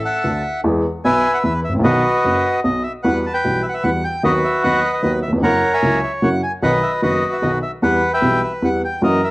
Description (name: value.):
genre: tango.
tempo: 151 BPM.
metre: 3/4.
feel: rubato.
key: E harmonic minor from 3.0 s.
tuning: A4 = 441 Hz.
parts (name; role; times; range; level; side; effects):
bandoneon; melody; 0.0-9.3 s; F#4 to A5; -18 LUFS; equal; cassette tape.
dark upright piano; accompaniment; 0.2-9.2 s; F#1 to G#4; -19 LUFS; equal; none.
room: light reverb, small room ambience.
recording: home recording on cassette, faint mains hum.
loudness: -15 LUFS.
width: side -21 dB against mid.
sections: 0.0-3.0 A section; 3.0-9.3 B section.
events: none.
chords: 0.0 Dadd9; 0.6 E; 1.8 B; 3.0 Emadd9; 4.2 B/D#; 5.4 F#7; 6.6 B; 7.8 Em.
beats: 0.25 | 0.64 1.04 1.44 | 1.84 2.24 2.64 | 3.04 3.44 3.84 | 4.24 4.64 5.03 | 5.43 5.83 6.23 | 6.62 7.02 7.42 | 7.82 8.22 8.62 | 9.02.